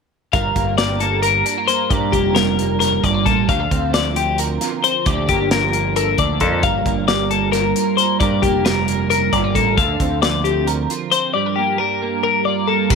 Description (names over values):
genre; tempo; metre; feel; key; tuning
math rock and midwest emo; 267 BPM (eighths); 7/8; straight; G minor; A4 = 440 Hz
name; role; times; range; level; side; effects
twelve-string electric guitar; accompaniment; 0.3-12.9 s; G2 to Bb4; -21 LUFS; right 12 dB; analog chorus
twelve-string electric guitar; arpeggios; 0.3-12.9 s; G4 to F5; -18 LUFS; left 12 dB; none
growling fingered electric bass; bass; 0.3-12.9 s; F1 to G2; -22 LUFS; equal; overdrive
modern studio drum kit; drums; 0.3-12.9 s; crash cymbal, hi-hat, kick drum, snare drum; -22 LUFS; equal; none
room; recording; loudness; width
light reverb, studio ambience; 1960s-style stereo with parts hard left and right; -15 LUFS; side -5 dB against mid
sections
0.3-12.9 A section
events
none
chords
0.3 Gm7; 3.5 Dm7; 5.1 Bb6; 6.6 Gm7; 9.8 Dm7; 11.3 Gm7